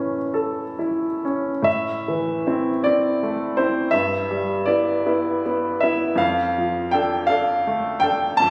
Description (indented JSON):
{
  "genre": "classical, romantic nocturne for solo piano",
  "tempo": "44-56 BPM (dotted quarters)",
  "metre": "12/8",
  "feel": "rubato",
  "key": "A minor",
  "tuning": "A4 = 440 Hz",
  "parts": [
    { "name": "clear upright piano", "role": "solo", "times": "0.0-8.5 s", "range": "F2 to A5", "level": "-22 LUFS", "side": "equal", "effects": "none" }
  ],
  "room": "moderate recital hall reverb, RT60 1.7 s",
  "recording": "recorded on a phone in the room, studio reverb, compression",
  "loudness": "-22 LUFS",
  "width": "mono",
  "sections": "0.0-1.7 A section; 1.7-8.5 B section",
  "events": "none",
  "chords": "0.0 A; 1.7 Am; 3.9 Em/G; 6.2 Dm/F"
}